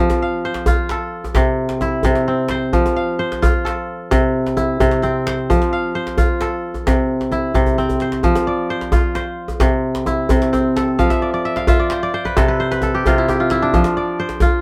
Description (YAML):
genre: west african traditional, West African string and xylophone music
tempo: 87 BPM (dotted quarters)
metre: 12/8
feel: straight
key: F major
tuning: A4 = 440 Hz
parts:
  - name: kora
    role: arpeggios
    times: 0.0-14.6 s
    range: C3 to F5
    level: -20 LUFS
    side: equal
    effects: none
  - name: djembe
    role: percussion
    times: 0.1-14.5 s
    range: none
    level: -22 LUFS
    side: equal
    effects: none
room: little or no reverb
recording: close, detailed microphones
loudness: -18 LUFS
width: mono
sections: 0.0-8.2 A section; 8.2-14.6 A section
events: drum fill 7.7-8.2; kora fill 11.0-13.7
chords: 0.0 F; 1.4 C; 2.7 F; 4.1 C; 5.5 F; 6.9 C; 8.2 F5; 9.6 C; 11.0 F; 12.4 N.C.; 13.7 F5